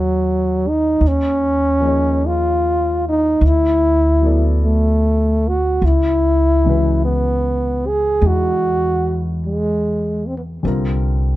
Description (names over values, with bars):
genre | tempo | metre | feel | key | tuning
jazz ballad | 50 BPM | 4/4 | swing 68% on 8ths | C# dorian | A4 = 440 Hz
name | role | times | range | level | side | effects
breathy trombone | melody | 0.0-10.4 s | F#3 to G#4 | -16 LUFS | equal | plate reverb
warm grand piano | accompaniment | 0.0-11.4 s | C#3 to D5 | -25 LUFS | left 4 dB | none
upright bass | bass | 0.0-11.4 s | C2 to E2 | -18 LUFS | equal | none
room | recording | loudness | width
light reverb | dark, warm production | -14 LUFS | side -16 dB against mid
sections
0.0-11.4 A section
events
none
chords
0.0 G#m7; 1.0 D#5; 3.4 Dadd9; 5.8 C#m9; 10.6 C5